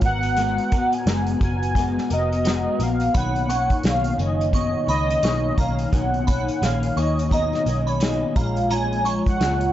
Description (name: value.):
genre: indie pop, bedroom pop.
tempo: 86 BPM.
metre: 4/4.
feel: swing 60% on 16ths.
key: unclear.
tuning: A4 = 440 Hz.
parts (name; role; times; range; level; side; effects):
electric guitar through a small old amp; accompaniment; 0.0-9.7 s; Bb2 to Bb4; -25 LUFS; left 3 dB; ensemble chorus, vibrato effect.
vintage muted picked electric bass; bass; 0.0-9.7 s; F1 to D#2; -25 LUFS; equal; none.
unplugged drum kit; drums; 0.0-9.7 s; hi-hat, kick drum, snare drum; -25 LUFS; equal; vintage 12-bit sampler grit.
tambourine; percussion; 0.0-9.7 s; none; -43 LUFS; right 3 dB; none.
warm velvety synth lead; melody; 0.1-9.7 s; C#5 to Ab5; -24 LUFS; right 1 dB; analog chorus.
glassy synth bell; second line; 3.1-9.7 s; A#5 to C#6; -32 LUFS; right 4 dB; tremolo, ensemble chorus, analog delay.
room: light reverb, studio ambience.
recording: dry, gritty hardware recording, nothing above 7.7 kHz.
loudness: -19 LUFS.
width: side -12 dB against mid.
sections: 0.0-9.7 A section.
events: none.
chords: 0.0 Abm9; 3.1 Bmaj9; 8.4 Bbm7.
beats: | 0.37 1.06 1.76 2.45 | 3.15 3.84 4.54 5.23 | 5.93 6.62 7.32 8.01 | 8.71 9.40.